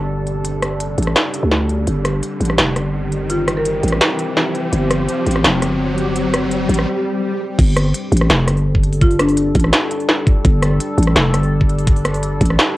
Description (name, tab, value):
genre	half-time drum and bass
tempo	168 BPM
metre	4/4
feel	half-time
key	unclear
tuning	A4 = 437 Hz
part	deep dark ambient pad	sustained chords	0.0-12.8 s	G3 to A4	-23 LUFS	equal	chorus, built-in reverb, sidechain pumping, cassette tape
part	growling 808-style bass	bass	0.0-12.6 s	F1 to D2	-17 LUFS	equal	none
part	riser and swell	sound effects	0.0-7.6 s	none	-24 LUFS	left 1 dB	none
part	industrial drum kit	drums	0.3-12.7 s	crash cymbal, hi-hat, rim click, snare drum	-18 LUFS	equal	cassette tape
part	marimba with medium mallets	melody	3.3-3.9, 9.0-9.7 s	D4 to Bb4	-21 LUFS	left 1 dB	cassette tape, analog delay
part	electronic kick drum	drums	7.6-12.5 s	none	-14 LUFS	equal	cassette tape
room	moderate booth ambience, RT60 0.2 s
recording	home recording on cassette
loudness	-14 LUFS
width	side -17 dB against mid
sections	0.0-7.6 A section; 7.6-12.8 B section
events	build-up 0.0-7.6; riser 0.0-6.9; break 6.9-7.6; swell 6.9-7.6; drop 7.6-12.8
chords	0.0 G5